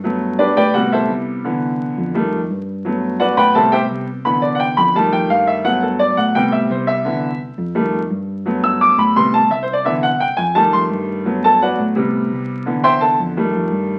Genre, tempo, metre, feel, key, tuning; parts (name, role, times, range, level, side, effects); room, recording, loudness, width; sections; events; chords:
latin, salsa; 171 BPM; 4/4; straight; G major; A4 = 439 Hz
clear baby grand piano; accompaniment; 0.0-14.0 s; C3 to E6; -17 LUFS; equal
fingered electric bass; bass; 0.0-14.0 s; C2 to A2; -25 LUFS; equal
wet studio reverb, RT60 0.7 s; very old 78 rpm record, vinyl crackle; -17 LUFS; mono
0.0-14.0 A section
grand piano solo 0.0-14.0
0.0 Gmaj7; 0.7 Am7; 1.4 Cmaj7; 2.1 F7; 2.8 Gmaj7; 3.5 Am7; 4.3 Cmaj7; 5.0 F7; 5.7 Gmaj7; 6.4 Am7; 7.1 Cmaj7; 7.8 F7; 8.5 Gmaj7; 9.2 Am7; 9.9 Cmaj7; 10.6 F7; 11.3 Gmaj7; 12.0 Am7; 12.7 Cmaj7; 13.4 F7